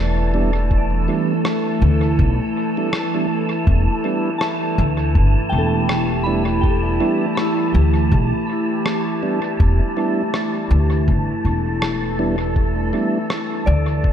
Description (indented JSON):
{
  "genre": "ambient dub",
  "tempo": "81 BPM",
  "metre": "4/4",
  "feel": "swing 57% on 16ths",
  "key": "E minor",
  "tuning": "A4 = 441 Hz",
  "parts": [
    { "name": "warbly tape-like pad", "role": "sustained chords", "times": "0.0-14.1 s", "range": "E3 to A4", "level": "-22 LUFS", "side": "right 1 dB", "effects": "chorus, built-in reverb, phaser" },
    { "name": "soft synth bell", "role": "arpeggios", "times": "0.0-14.1 s", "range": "E4 to B5", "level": "-28 LUFS", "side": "left 3 dB", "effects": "chorus, ping-pong delay" },
    { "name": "upright bass", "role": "bass", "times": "0.0-14.0 s", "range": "E1 to D2", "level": "-18 LUFS", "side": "equal", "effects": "none" },
    { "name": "wind-like tuned noise texture", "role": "texture", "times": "0.0-14.1 s", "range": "A5", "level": "-28 LUFS", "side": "right 2 dB", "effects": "built-in reverb, ensemble chorus" },
    { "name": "mellow tonewheel organ", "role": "stabs", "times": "0.3-13.2 s", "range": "G3 to E4", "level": "-26 LUFS", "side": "right 3 dB", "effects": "slow rotary speaker, dub echo" },
    { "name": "electronic kick drum", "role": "drums", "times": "0.7-14.1 s", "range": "none", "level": "-18 LUFS", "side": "equal", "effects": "none" },
    { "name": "electronic rim click", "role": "drums", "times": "1.4-13.5 s", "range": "none", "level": "-30 LUFS", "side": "equal", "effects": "dub echo" }
  ],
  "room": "moderate lush hall reverb, RT60 2.5 s",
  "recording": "dreamy mix soaked in reverb",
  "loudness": "-16 LUFS",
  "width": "side -9 dB against mid",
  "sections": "0.0-14.1 A section",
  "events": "none",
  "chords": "0.0 Em7"
}